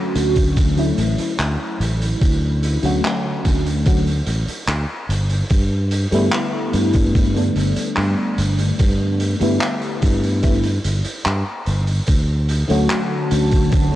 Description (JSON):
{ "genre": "vaporwave", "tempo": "73 BPM", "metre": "4/4", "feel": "straight", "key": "D major", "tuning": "A4 = 440 Hz", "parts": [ { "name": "FM electric piano with soft pad layer", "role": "accompaniment", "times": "0.0-14.0 s", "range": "D3 to F#4", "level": "-21 LUFS", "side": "left 1 dB", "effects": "phaser, wide subtle chorus, analog delay" }, { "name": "fingered electric bass", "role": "bass", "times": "0.2-14.0 s", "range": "G1 to G2", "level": "-19 LUFS", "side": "equal", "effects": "none" }, { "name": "raw garage drum kit", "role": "drums", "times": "0.2-13.9 s", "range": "handclaps, hi-hat", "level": "-26 LUFS", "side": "equal", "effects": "vintage 12-bit sampler grit" }, { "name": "electronic kick drum", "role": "drums", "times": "0.4-13.9 s", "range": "none", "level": "-16 LUFS", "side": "equal", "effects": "vintage 12-bit sampler grit" }, { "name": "warbly tape-like pad", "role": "sustained chords", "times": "12.6-14.0 s", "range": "D3 to A5", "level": "-28 LUFS", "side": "right 2 dB", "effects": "chorus, built-in reverb" } ], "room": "small room ambience", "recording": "transformer saturation, cassette tape", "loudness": "-16 LUFS", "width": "side -14 dB against mid", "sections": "0.0-14.0 A section", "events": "none", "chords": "0.0 Dmaj7; 5.1 G69; 12.1 Dmaj7" }